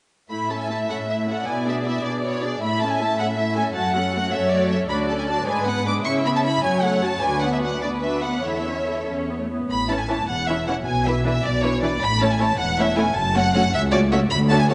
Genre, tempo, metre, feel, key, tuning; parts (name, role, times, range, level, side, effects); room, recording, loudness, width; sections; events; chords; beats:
quick classical-period movement for string orchestra; 104 BPM (dotted quarters); 6/8; rubato; A major; A4 = 439 Hz
rich studio violin section; melody; 0.3-14.7 s; C#5 to D6; -27 LUFS; equal
warm studio violin section; second line; 0.3-14.7 s; E4 to F#5; -29 LUFS; equal
rich studio viola section; accompaniment; 0.3-14.7 s; E3 to C#5; -29 LUFS; equal
dark studio cello section; bass; 0.3-14.7 s; C#2 to C#3; -29 LUFS; equal
warm studio double bass section; bass; 9.7-14.7 s; E1 to D2; -27 LUFS; equal
wet concert hall reverb, RT60 2.4 s; nothing above 10.4 kHz; -22 LUFS; mono
0.3-9.7 A section; 9.7-14.7 A section
0.3 A; 1.5 E7/B; 2.6 A; 3.8 F#m; 4.9 Dmaj7; 5.5 G#dim; 6.1 C#m7; 6.6 F#m; 7.2 Bm/D; 8.4 A/E; 9.1 E5; 9.7 A; 10.9 E5/B; 12.0 A; 13.2 F#m
| 0.31 0.90 | 1.48 2.05 | 2.62 3.20 | 3.76 4.33 | 4.90 5.47 | 6.06 6.64 | 7.23 7.82 | 8.45 9.08 | 9.71 10.29 | 10.87 11.45 | 12.03 12.60 | 13.16 13.74 | 14.31